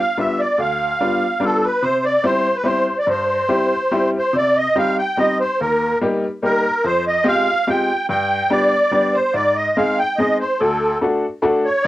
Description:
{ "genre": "musette waltz", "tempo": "144 BPM", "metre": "3/4", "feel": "straight", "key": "C major, C minor from 4.3 s", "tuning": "A4 = 440 Hz", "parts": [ { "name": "musette accordion", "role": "melody", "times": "0.0-11.9 s", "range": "A4 to G5", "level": "-17 LUFS", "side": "right 1 dB", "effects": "cassette tape" }, { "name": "bright upright piano", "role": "accompaniment", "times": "0.2-11.9 s", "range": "D2 to A4", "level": "-21 LUFS", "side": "left 1 dB", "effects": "cassette tape" } ], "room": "moderate booth ambience, RT60 0.2 s", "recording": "home recording on cassette", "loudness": "-16 LUFS", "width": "side -15 dB against mid", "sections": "0.0-4.3 A section; 4.3-11.9 B section", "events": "none", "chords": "0.0 G7; 1.8 C; 4.3 Cm; 5.6 Eb; 6.8 Fmadd9; 8.1 G; 9.3 Ab; 10.6 D" }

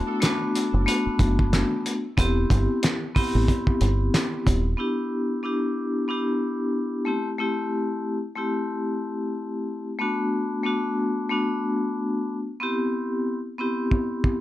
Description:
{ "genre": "hip hop, boom-bap hip-hop", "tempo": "92 BPM", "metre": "4/4", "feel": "swing 57% on 16ths", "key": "E minor", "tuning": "A4 = 440 Hz", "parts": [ { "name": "vibraphone with medium hard mallets", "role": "accompaniment", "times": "0.0-14.4 s", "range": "A3 to G4", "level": "-24 LUFS", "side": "left 1 dB", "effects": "high-pass filter, low-pass filter" }, { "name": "cloth-damped thuddy drum kit", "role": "drums", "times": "0.2-4.6, 13.9-14.4 s", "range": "handclaps, hi-hat, kick drum, snare drum", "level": "-23 LUFS", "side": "equal", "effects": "none" }, { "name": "deep dub fingered electric bass", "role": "bass", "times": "0.7-4.7 s", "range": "D#1 to A1", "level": "-23 LUFS", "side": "equal", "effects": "none" } ], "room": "light reverb", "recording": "none", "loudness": "-22 LUFS", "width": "side -14 dB against mid", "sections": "0.0-4.8 A section; 4.8-14.4 B section", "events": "drum fill 13.9-14.4", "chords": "0.0 Bm7; 2.2 Cmaj7/E; 4.8 Em7; 7.1 Am7; 10.0 Bm7; 12.6 Cmaj7" }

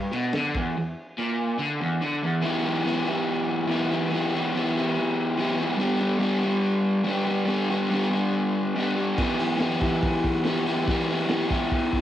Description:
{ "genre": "garage rock duo or trio", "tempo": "142 BPM", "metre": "4/4", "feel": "straight", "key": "E minor", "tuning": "A4 = 440 Hz", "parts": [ { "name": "crunchy overdriven guitar", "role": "riff", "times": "0.0-12.0 s", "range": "E2 to G4", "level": "-23 LUFS", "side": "equal", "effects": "spring reverb, cassette tape" }, { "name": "crunchy breakbeat drum kit", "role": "drums", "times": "0.1-0.6, 9.2-12.0 s", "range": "crash cymbal, hi-hat, kick drum, ride cymbal, snare drum", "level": "-30 LUFS", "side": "equal", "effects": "cassette tape" } ], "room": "moderate studio reverb, RT60 0.6 s", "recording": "home recording on cassette", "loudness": "-22 LUFS", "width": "side -12 dB against mid", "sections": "0.0-2.4 A section; 2.4-12.0 B section", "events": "none", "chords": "0.0 N.C.; 2.4 Em; 5.8 G; 9.2 Em" }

